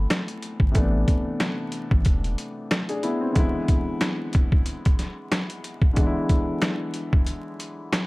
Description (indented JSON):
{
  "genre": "hip hop, boom-bap hip-hop",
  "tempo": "92 BPM",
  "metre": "4/4",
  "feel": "swing 58% on 16ths",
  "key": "A harmonic minor",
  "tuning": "A4 = 438 Hz",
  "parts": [
    { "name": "dark concert grand piano", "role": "accompaniment", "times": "0.0-8.1 s", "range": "C3 to G#4", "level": "-28 LUFS", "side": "left 1 dB", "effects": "high-pass filter, low-pass filter" },
    { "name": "warm sub bass", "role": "bass", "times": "0.0-2.4 s", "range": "E1 to A1", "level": "-24 LUFS", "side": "equal", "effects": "none" },
    { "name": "trip hop sampler-style drum kit", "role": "drums", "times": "0.1-8.1 s", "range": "hi-hat, kick drum, snare drum", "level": "-22 LUFS", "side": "equal", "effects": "none" }
  ],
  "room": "little or no reverb",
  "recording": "dark, warm production, vinyl crackle",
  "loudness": "-21 LUFS",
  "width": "side -23 dB against mid",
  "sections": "0.0-8.1 A section",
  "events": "break 7.3-8.1",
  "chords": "0.0 Amadd9; 3.4 E7"
}